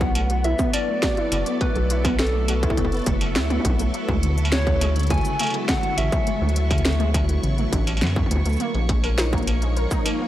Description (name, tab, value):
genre	IDM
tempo	103 BPM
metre	4/4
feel	straight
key	unclear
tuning	A4 = 440 Hz
part	soft struck synth lead	melody	0.0-8.3 s	A4 to G#5	-28 LUFS	left 1 dB	chorus, tape echo
part	soft string machine	sustained chords	0.0-10.3 s	E#3 to D5	-31 LUFS	equal	ensemble chorus
part	warbly dusty pluck	arpeggios	0.0-10.3 s	C#3 to A#4	-27 LUFS	equal	ensemble chorus, analog delay
part	rubbery square bass	bass	0.0-9.9 s	F#1 to F#2	-22 LUFS	equal	none
part	electronic kick drum	drums	0.0-10.0 s	none	-24 LUFS	equal	distortion
part	industrial drum kit	drums	0.0-10.2 s	cabasa, hi-hat, snare drum, struck metal, toms	-27 LUFS	equal	none
part	bubbling stepped-filter texture	texture	0.0-10.3 s	C#6	-38 LUFS	right 4 dB	chorus, built-in reverb
room	little or no reverb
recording	dry, gritty hardware recording, transformer saturation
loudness	-19 LUFS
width	side -13 dB against mid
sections	0.0-10.3 A section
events	none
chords	0.0 Bm7; 3.9 Dmaj9#11; 8.6 A#m7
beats	0.45 1.03 | 1.61 2.19 2.77 3.36 | 3.94 4.52 5.11 5.69 | 6.27 6.85 7.43 8.02 | 8.60 9.18 9.77